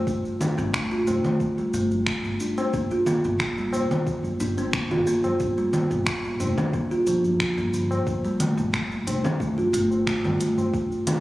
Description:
organic downtempo; 90 BPM; 4/4; straight; G minor; A4 = 442 Hz
kalimba; arpeggios; 0.0-11.2 s; D3 to F4; -24 LUFS; equal; tape echo
upright bass; bass; 0.1-10.8 s; F1 to G2; -32 LUFS; equal; tube saturation, sidechain pumping
electronic kick drum; drums; 0.1-10.9 s; -32 LUFS; equal
organic electronic drum kit; drums; 0.1-11.2 s; congas, finger snaps, hi-hat, shaker; -28 LUFS; equal
tabla; percussion; 0.4-11.2 s; -33 LUFS; left 2 dB
moderate concert hall reverb, RT60 2.0 s; recorded on a phone in the room, club reverb; -22 LUFS; side -16 dB against mid
0.0-11.2 A section
0.0 N.C.; 2.7 Gm7; 8.1 N.C.

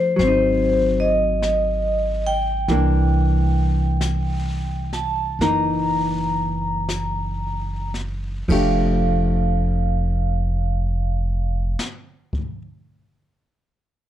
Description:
jazz ballad; 36-50 BPM; 4/4; swing 66% on 8ths; F major; A4 = 439 Hz
vibraphone with medium hard mallets; melody; 0.0-11.8 s; C5 to Bb5; -23 LUFS; equal
vintage hollow-body jazz guitar; accompaniment; 0.0-11.8 s; E3 to G4; -24 LUFS; left 1 dB
upright bass; bass; 0.2-11.7 s; F1 to C2; -22 LUFS; equal
jazz brush drum kit; drums; 0.2-12.8 s; brushed snare drum, crash cymbal, hi-hat, kick drum, snare drum; -32 LUFS; left 2 dB
little or no reverb; dark, warm production; -19 LUFS; side -12 dB against mid
0.0-8.5 A section; 8.5-14.1 B section
slowing down 0.0-8.5
0.2 Ab7; 2.7 C9; 5.4 Gb6; 8.5 F69

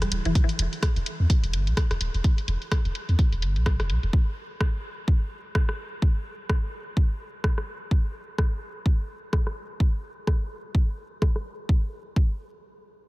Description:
minimal techno; 127 BPM; 4/4; swing 58% on 16ths; E minor; A4 = 439 Hz
punchy sub bass; bass; 0.0-4.1 s; D1 to E2; -24 LUFS; equal; sidechain pumping
house drum kit; drums; 0.0-11.4 s; hi-hat, rim click; -34 LUFS; equal; low-pass filter on hats, low-pass filter on snare
electronic kick drum; drums; 0.4-12.3 s; -22 LUFS; equal
little or no reverb; -23 LUFS; side -21 dB against mid
0.0-11.7 A section; 11.7-13.1 B section
filter sweep on drum 0.0-11.7

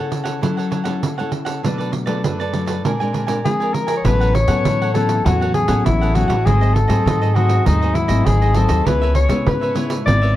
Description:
samba and choro; 100 BPM; 4/4; straight; A major; A4 = 440 Hz
cavaquinho; accompaniment; 0.0-10.4 s; D4 to Ab5; -26 LUFS; right 4 dB
nylon-string guitar; accompaniment; 0.0-10.4 s; F#2 to A4; -22 LUFS; left 2 dB
pandeiro; percussion; 0.1-10.4 s; -23 LUFS; right 4 dB; dub echo
mellow soprano saxophone; melody; 3.4-10.4 s; D#4 to D5; -20 LUFS; left 3 dB; dub echo
upright bass; bass; 4.0-10.4 s; G#1 to C#3; -17 LUFS; equal
light reverb, studio reverb; echo-heavy mix, cassette tape; -15 LUFS; side -14 dB against mid
0.0-4.1 A section; 4.1-10.4 B section
0.0 F#m7; 1.6 Bm7; 2.8 Bb9; 4.1 A69; 6.5 G#7b9; 8.9 C#m7

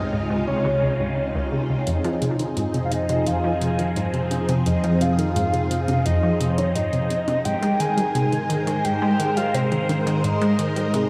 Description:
ambient, sequencer-driven space music; 86 BPM; 4/4; straight; F minor; A4 = 440 Hz
soft octave-layered synth lead; melody; 0.0-11.1 s; C5 to Ab5; -28 LUFS; equal; chorus, tape echo
phased string machine; sustained chords; 0.0-11.1 s; C3 to C5; -28 LUFS; equal; ensemble chorus, phaser
analog drone; bass; 0.0-11.1 s; Db2 to Ab2; -31 LUFS; equal; chorus, tube saturation
analog pluck; riff; 0.1-11.1 s; Db2 to Ab3; -26 LUFS; equal; chorus, tape echo
electronic hi-hat and congas; percussion; 1.9-11.1 s; -36 LUFS; equal
wet lush hall reverb, RT60 2.7 s; small room ambience; -22 LUFS; mono
0.0-11.1 A section
filter sweep on synth arpeggio sound 0.0-11.1
0.0 Dbmaj7; 1.9 Fm7; 7.5 Abmaj7

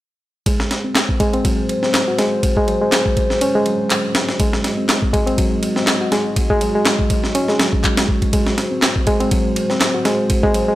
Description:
breakbeat, breaks; 122 BPM; 4/4; swing 55% on 16ths; A4 = 440 Hz
dark analog pad; sustained chords; 0.5-10.8 s; G#3 to D#5; -23 LUFS; left 1 dB; chorus, sidechain pumping
reed electric piano; riff; 0.5-10.8 s; F#3 to F#4; -19 LUFS; equal; vintage 12-bit sampler grit, low-pass filter, analog delay
breakbeat sampler-style drum kit; drums; 0.5-10.7 s; kick drum, ride cymbal, snare drum; -18 LUFS; equal; studio ambience
electronic handclaps; drums; 1.0-9.9 s; -23 LUFS; equal; studio ambience
light reverb; dry, gritty hardware recording; -15 LUFS; side -15 dB against mid
0.5-10.8 A section
filter sweep on reed electric piano 0.5-10.8
0.5 G#7

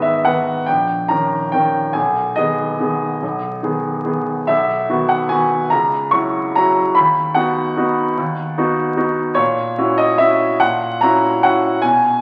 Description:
classical, piano waltz; 136-158 BPM; 3/4; rubato; A4 = 440 Hz
bright grand piano; solo; 0.0-12.2 s; A#1 to C#6; -17 LUFS; equal
wet recital hall reverb, RT60 1.4 s; very old 78 rpm record, vinyl crackle; -17 LUFS; mono
0.0-12.2 A section
0.0 G#m; 0.7 D#7/A#; 1.9 G#m/B; 4.5 B; 5.7 F#7/C#; 7.0 B/D#; 9.4 F#7/A#

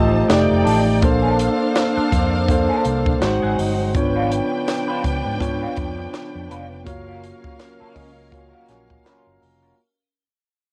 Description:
lush 1970s-style soul; 82 BPM; 4/4; swing 58% on 16ths; A4 = 443 Hz
rich studio string section; second line; 0.0-9.7 s; Db4 to A5; -29 LUFS; equal; cassette tape
mellow tine electric piano; accompaniment; 0.0-9.8 s; Ab3 to Bb5; -23 LUFS; equal; cassette tape
percussive tonewheel organ; sustained chords; 0.0-9.8 s; Db3 to F5; -34 LUFS; equal; overdrive, subtle chorus, cassette tape
fingered electric bass; bass; 0.0-9.7 s; F1 to Ab2; -26 LUFS; equal; tube saturation
electric guitar through a small old amp; riff; 0.1-9.7 s; C4 to D5; -28 LUFS; equal; wah, cassette tape
compact cocktail drum kit; drums; 0.3-9.6 s; hi-hat, kick drum, snare drum; -26 LUFS; equal; cassette tape
clear trombone section; stabs; 8.0-9.8 s; Gb3 to Db4; -60 LUFS; equal; cassette tape
light reverb; home recording on cassette; -19 LUFS; mono
0.0-9.8 A section
fade-out 0.0-9.8; band accent 6.9-9.8; tine electric piano fill 7.6-9.8
0.3 F13; 1.0 Bbmaj9; 3.2 Ab7; 3.9 Db7b9/Ab; 6.9 Gbmaj7

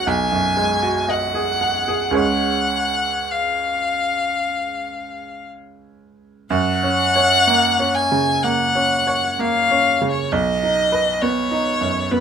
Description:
classical, romantic duo for violin and grand piano; 53-67 BPM; 4/4; rubato; F# major; A4 = 440 Hz
rich violin; melody; 0.0-12.2 s; B4 to G#5; -18 LUFS; left 2 dB
bright baby grand piano; accompaniment; 0.0-12.2 s; B1 to F#5; -21 LUFS; right 3 dB
little or no reverb; close, detailed microphones; -16 LUFS; side -7 dB against mid
0.0-6.5 A section; 6.5-12.2 B section
0.1 G#m7/B; 2.2 C#; 6.5 F#; 10.3 B

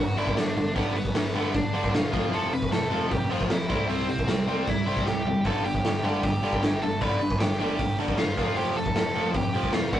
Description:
punk rock; 154 BPM; 4/4; straight; G major; A4 = 441 Hz
bluesy overdriven lead guitar; melody; 0.0-10.0 s; B3 to B5; -31 LUFS; right 1 dB; distortion
biting overdriven guitar; riff; 0.0-10.0 s; F2 to D4; -28 LUFS; equal
fuzz picked electric bass; bass; 0.0-10.0 s; E1 to E2; -34 LUFS; equal; overdrive
raw garage drum kit; drums; 0.2-10.0 s; hi-hat, kick drum, snare drum, toms; -27 LUFS; equal
moderate studio ambience, RT60 0.5 s; rough rehearsal-room recording, tube saturation, nothing above 10.4 kHz; -23 LUFS; side -11 dB against mid
0.0-10.0 A section
drum fill 5.1-5.5
0.0 G; 2.1 F; 3.7 C; 5.5 G; 8.4 F

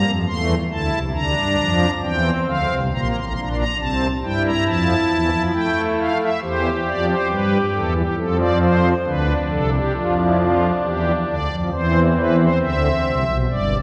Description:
classical, baroque-style 3-part fugue for pipe organ; 68 BPM; 4/4; straight; F major; A4 = 442 Hz
pipe organ, strings celeste; solo; 0.0-13.8 s; G1 to C6; -20 LUFS; equal
wet church reverb, RT60 2.6 s; heard from further back in the room; -20 LUFS; mono
0.0-13.5 A section
0.0 F; 1.2 Bb/D; 2.9 C7; 4.7 F; 6.4 C/E; 8.2 F; 10.0 G5/F; 11.7 C/E

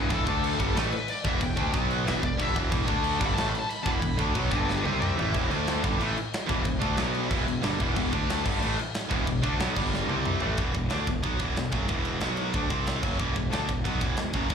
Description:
heavy metal; 183 BPM; 4/4; straight; E minor; A4 = 440 Hz
high-gain lead guitar; melody; 0.0-5.3 s; G4 to B5; -33 LUFS; left 2 dB; distortion, slapback echo, ping-pong delay
cranked stack guitar; riff; 0.0-10.6 s; E2 to D4; -32 LUFS; equal; overdrive, slapback echo
tight distorted guitar; riff; 0.0-14.5 s; E2 to D4; -33 LUFS; left 14 dB; distortion, slapback echo
fuzz picked electric bass; bass; 0.0-14.5 s; E1 to D2; -31 LUFS; equal; overdrive
high-gain distorted guitar; riff; 0.1-14.5 s; E2 to D4; -32 LUFS; right 15 dB; distortion
tight metal drum kit; drums; 0.1-14.5 s; crash cymbal, kick drum, ride cymbal, snare drum, toms; -30 LUFS; equal
little or no reverb; live gig heard through the venue's PA, club reverb; -24 LUFS; side -7 dB against mid
0.0-5.3 A section; 5.3-10.6 B section; 10.6-14.5 C section
half time 0.0-5.3; lead electric guitar solo 0.0-5.3; drum fill 4.7-5.3, 9.9-10.6
0.2 D5; 0.6 Em; 1.7 B5; 2.1 Em; 2.9 D5; 3.2 Em; 4.5 G5; 4.8 C5; 5.2 A5; 5.3 E5; 5.5 D5; 5.8 Em; 7.0 B5; 7.3 Em; 8.1 D5; 8.4 Em; 9.8 G5; 10.1 C5; 10.4 A5; 10.6 E5; 12.2 B5; 12.5 D5; 12.7 C5; 13.0 E5

